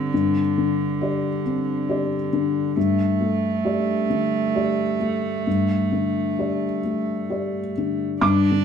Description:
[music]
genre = neoclassical piano and strings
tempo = 66 BPM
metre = 3/4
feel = rubato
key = unclear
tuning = A4 = 440 Hz
[part]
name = warm cello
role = second line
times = 0.0-8.6 s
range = D3 to D4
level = -25 LUFS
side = right 6 dB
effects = none
[part]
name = felt-muted upright piano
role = accompaniment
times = 0.0-8.6 s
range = G2 to D6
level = -21 LUFS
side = left 3 dB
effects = none
[sound]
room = wet studio reverb, RT60 0.7 s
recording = band playing live in one room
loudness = -20 LUFS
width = side -7 dB against mid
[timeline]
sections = 0.0-8.2 A section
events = none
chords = 0.0 Csus2/G; 2.8 Gsus2

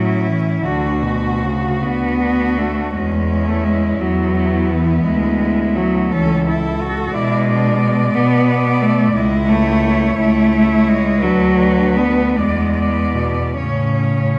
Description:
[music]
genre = classical, lyrical piece for cello ensemble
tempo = 47-61 BPM (dotted quarters)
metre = 6/8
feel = rubato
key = A major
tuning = A4 = 440 Hz
[part]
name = clear cello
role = melody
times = 0.0-14.4 s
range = C#4 to D5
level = -27 LUFS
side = equal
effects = none
[part]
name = rich cello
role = second line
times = 0.0-14.4 s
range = B3 to F#4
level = -26 LUFS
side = equal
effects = none
[part]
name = rich cello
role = accompaniment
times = 0.0-14.4 s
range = B2 to B3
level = -19 LUFS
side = equal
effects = none
[part]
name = rich cello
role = bass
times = 0.0-14.4 s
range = C#2 to B2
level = -22 LUFS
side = equal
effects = none
[sound]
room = wet concert hall reverb, RT60 1.9 s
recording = vinyl crackle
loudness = -16 LUFS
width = mono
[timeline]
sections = 0.0-14.4 A section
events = none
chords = 0.0 A; 0.7 D; 2.9 E5; 5.1 E7/D; 6.1 A/C#; 7.1 G#dim/B; 9.2 A/C#; 11.2 Bm/D; 12.4 E7; 13.6 A

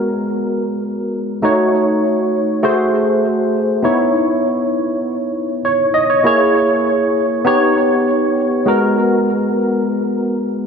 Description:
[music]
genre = pop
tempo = 100 BPM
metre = 4/4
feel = straight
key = unclear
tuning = A4 = 440 Hz
[part]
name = barky tine electric piano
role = solo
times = 0.0-10.7 s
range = G#3 to D#5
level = -14 LUFS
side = equal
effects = ensemble chorus, digital delay
[sound]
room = light reverb, digital ambience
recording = none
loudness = -14 LUFS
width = side -6 dB against mid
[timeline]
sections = 0.0-8.7 A section; 8.7-10.7 B section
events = none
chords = 0.0 G#m9; 1.4 D#m7b5; 2.6 G#7b9; 3.8 C#m9; 6.2 A#m7b5; 7.5 D#7b13; 8.7 G#m9

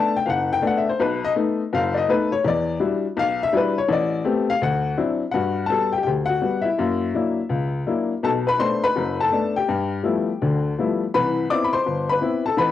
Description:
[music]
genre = solo jazz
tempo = 166 BPM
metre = 4/4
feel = swing 66% on 8ths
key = G major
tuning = A4 = 440 Hz
[part]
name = warm upright piano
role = solo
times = 0.0-12.7 s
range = F#1 to D6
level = -19 LUFS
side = left 4 dB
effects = cassette tape
[sound]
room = moderate spring reverb, RT60 1.0 s, small room ambience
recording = home recording on cassette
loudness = -19 LUFS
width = side -12 dB against mid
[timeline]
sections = 0.0-5.3 A section; 5.3-12.7 B section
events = upright piano solo 0.0-5.3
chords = 0.0 Bm7; 1.0 B7; 2.4 Em9; 3.9 Am9; 4.6 D9; 5.3 Gmaj7; 6.8 F#7b13; 8.2 Bm7; 9.7 G13; 11.1 Cmaj7

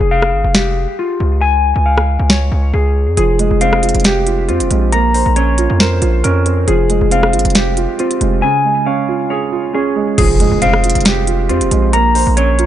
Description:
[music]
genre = hip hop, trap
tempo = 137 BPM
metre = 4/4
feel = half-time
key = F minor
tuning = A4 = 440 Hz
[part]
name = mellow electric guitar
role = arpeggios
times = 0.0-12.7 s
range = F4 to Bb5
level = -16 LUFS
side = left 4 dB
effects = wide subtle chorus, low-pass filter, tape echo
[part]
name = distorted 808-style bass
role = bass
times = 0.0-12.7 s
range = F1 to F2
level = -15 LUFS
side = equal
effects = distortion
[part]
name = trap drum kit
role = drums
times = 0.2-12.7 s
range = crash cymbal, hi-hat, rim click, snare drum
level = -16 LUFS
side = equal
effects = none
[part]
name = dark concert grand piano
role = accompaniment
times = 3.2-12.7 s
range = Db3 to C5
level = -17 LUFS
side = right 9 dB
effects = low-pass filter
[part]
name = impact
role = sound effects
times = 10.2-11.9 s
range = none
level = -20 LUFS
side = equal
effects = none
[sound]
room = digital ambience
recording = nothing above 10.6 kHz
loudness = -11 LUFS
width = side -11 dB against mid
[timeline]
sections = 0.0-10.2 A section; 10.2-12.7 B section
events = break 0.0-3.2; impact 10.2-11.9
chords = 0.0 Fmadd9; 1.4 Db; 3.2 Fmadd9; 4.9 Bbmadd9; 6.7 Fmadd9; 8.4 Db; 10.2 Fmadd9; 11.9 Bbmadd9

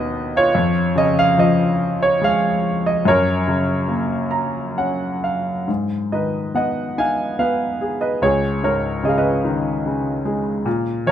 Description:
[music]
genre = classical, lyrical solo piano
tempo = 63-76 BPM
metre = 3/4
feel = rubato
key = unclear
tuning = A4 = 438 Hz
[part]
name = clear grand piano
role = solo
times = 0.0-11.1 s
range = C#2 to A#5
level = -17 LUFS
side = equal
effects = none
[sound]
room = moderate recital hall reverb, RT60 1.7 s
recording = close, detailed microphones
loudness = -17 LUFS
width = side -10 dB against mid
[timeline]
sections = 0.0-5.7 A section; 5.7-11.1 B section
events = grand piano fill 3.9-5.7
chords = 0.0 Badd9/D#; 0.5 C#/E#; 3.0 F#; 5.7 G#m; 8.2 C#sus2

